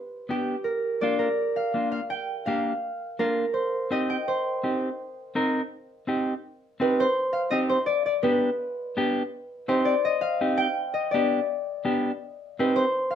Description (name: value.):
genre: latin.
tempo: 166 BPM.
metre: 4/4.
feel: straight.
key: C minor, C harmonic minor from 6.4 s.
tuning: A4 = 438 Hz.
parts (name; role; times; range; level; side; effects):
concert harp; melody; 0.0-13.2 s; G4 to G5; -26 LUFS; left 1 dB; none.
mellow electric guitar; accompaniment; 0.3-12.8 s; Bb3 to Bb4; -26 LUFS; equal; none.
room: moderate studio reverb, RT60 0.6 s.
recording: minimal, uncompressed stereo recording.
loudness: -24 LUFS.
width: side -9 dB against mid.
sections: 0.0-6.4 A section; 6.4-13.2 B section.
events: none.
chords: 0.0 G; 0.7 Bb; 3.5 Cm; 7.9 G; 9.3 Cm; 10.8 G; 12.2 Cm.